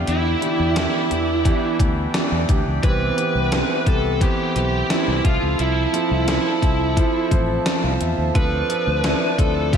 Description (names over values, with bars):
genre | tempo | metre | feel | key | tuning
1980s-style pop | 87 BPM | 4/4 | straight | unclear | A4 = 437 Hz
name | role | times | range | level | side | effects
warm concert grand piano | accompaniment | 0.0-9.8 s | D3 to A5 | -24 LUFS | right 1 dB | slapback echo
pedal harmonium | sustained chords | 0.0-9.8 s | F3 to B5 | -30 LUFS | right 1 dB | none
fingered electric bass | bass | 0.0-9.8 s | A1 to E2 | -23 LUFS | left 1 dB | none
lead guitar through a small cranked amp | melody | 0.1-9.8 s | E4 to B4 | -23 LUFS | right 2 dB | overdrive, slapback echo
gated 80s digital drum machine | drums | 0.1-9.8 s | hi-hat, kick drum, snare drum | -21 LUFS | equal | gated reverb, gated reverb snare, overdrive
room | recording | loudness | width
moderate lush hall reverb, RT60 2.8 s | big arena sound | -17 LUFS | side -7 dB against mid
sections
0.0-9.8 A section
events
none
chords
0.0 Em7; 2.8 Cmaj7; 5.2 Fmaj7/C; 8.3 Dm7